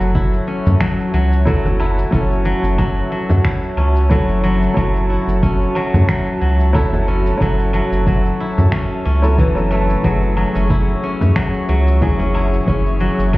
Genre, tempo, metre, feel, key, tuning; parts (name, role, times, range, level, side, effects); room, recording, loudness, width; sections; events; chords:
organic downtempo; 91 BPM; 4/4; swing 55% on 16ths; F# minor; A4 = 440 Hz
felt-muted upright piano; accompaniment; 0.0-13.4 s; E3 to A4; -24 LUFS; equal; sidechain pumping, tape echo
airy breathy pad; sustained chords; 0.0-13.4 s; F#4 to C#6; -26 LUFS; right 1 dB; chorus, sidechain pumping
steel-string zither; arpeggios; 0.0-13.4 s; E3 to E4; -21 LUFS; left 2 dB; tape echo
round analog bass; bass; 0.0-13.4 s; F#1 to F#2; -16 LUFS; equal
electronic shaker, finger snaps and woodblock; drums; 0.0-13.4 s; -27 LUFS; equal
electronic kick drum; drums; 0.2-13.4 s; -19 LUFS; equal
frame drum; percussion; 0.7-12.3 s; -24 LUFS; left 1 dB
light reverb; heard muffled through a wall, stone room reverb, EQ; -14 LUFS; side -19 dB against mid
0.0-13.4 A section
0.0 F#m7; 10.0 C#m/F#